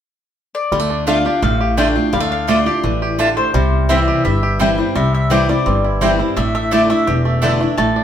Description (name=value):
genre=bluegrass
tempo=170 BPM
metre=4/4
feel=straight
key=D minor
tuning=A4 = 442 Hz
part: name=mandolin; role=melody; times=0.5-8.0 s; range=C5 to A5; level=-20 LUFS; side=left 3 dB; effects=none
part: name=bluegrass banjo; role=melody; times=0.7-8.0 s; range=G3 to G4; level=-23 LUFS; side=right 3 dB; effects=none
part: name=picked steel-string acoustic guitar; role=accompaniment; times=0.7-8.0 s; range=E2 to F4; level=-18 LUFS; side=equal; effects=none
part: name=upright bass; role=bass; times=0.7-8.0 s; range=E1 to D2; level=-20 LUFS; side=equal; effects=none
part: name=mandolin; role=stabs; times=1.1-7.5 s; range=A3 to A5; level=-20 LUFS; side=right 1 dB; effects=none
room=wet studio reverb, RT60 0.8 s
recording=heard from further back in the room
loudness=-14 LUFS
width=side -9 dB against mid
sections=0.7-8.0 A section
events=none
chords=0.0 N.C.; 0.7 Dm; 3.5 C; 6.4 Asus4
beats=0.02 0.37 | 0.72 1.07 1.43 1.78 | 2.13 2.48 2.84 3.19 | 3.54 3.90 4.25 4.60 | 4.95 5.31 5.66 6.01 | 6.37 6.72 7.07 7.43 | 7.78